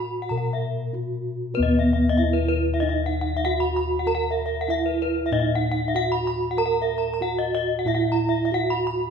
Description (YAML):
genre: Balinese gamelan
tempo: 96 BPM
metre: 4/4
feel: straight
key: unclear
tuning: A4 = 440 Hz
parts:
  - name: gamelan-type bronze metallophone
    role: melody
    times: 0.0-9.1 s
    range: Cb4-20c to Bb4-30c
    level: -24 LUFS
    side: right 3 dB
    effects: none
  - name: gamelan-type bronze metallophone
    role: arpeggios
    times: 0.0-8.9 s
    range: Cb5-20c to Cb6-20c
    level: -26 LUFS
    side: left 4 dB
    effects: none
  - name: gamelan-type bossed gongs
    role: bass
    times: 0.0-9.1 s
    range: Eb2 to Cb5-20c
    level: -27 LUFS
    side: left 2 dB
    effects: none
room: wet recital hall reverb, RT60 1.8 s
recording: minimal, uncompressed stereo recording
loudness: -21 LUFS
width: side -6 dB against mid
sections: 0.0-9.1 A section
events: break 0.6-1.6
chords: none